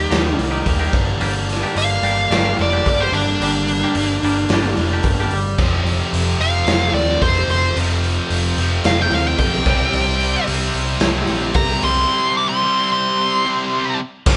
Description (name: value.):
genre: quiet-loud alternative rock.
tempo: 110 BPM.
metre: 4/4.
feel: straight.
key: unclear.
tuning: A4 = 438 Hz.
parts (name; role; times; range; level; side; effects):
dark smooth lead guitar; melody; 0.0-14.0 s; D4 to D6; -21 LUFS; equal; overdrive.
distorted electric guitar; riff; 0.0-14.4 s; F2 to E4; -26 LUFS; equal; distortion.
overdriven picked electric bass; bass; 0.0-14.4 s; F1 to Eb2; -24 LUFS; equal; none.
twangy electric guitar; arpeggios; 0.1-5.4 s; F3 to G4; -29 LUFS; equal; spring reverb.
raw garage drum kit; drums; 0.1-14.4 s; crash cymbal, hi-hat, kick drum, snare drum; -23 LUFS; equal; none.
heavy high-gain guitar; riff; 5.6-14.4 s; F2 to C4; -27 LUFS; equal; distortion.
room: light reverb.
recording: band playing live in one room, nothing above 10.7 kHz.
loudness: -18 LUFS.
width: mono.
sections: 0.0-14.3 A section.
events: half time 0.0-14.3; lead electric guitar solo 0.0-14.3.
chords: 0.0 Ebadd9; 0.9 Gm; 5.6 F; 9.7 C.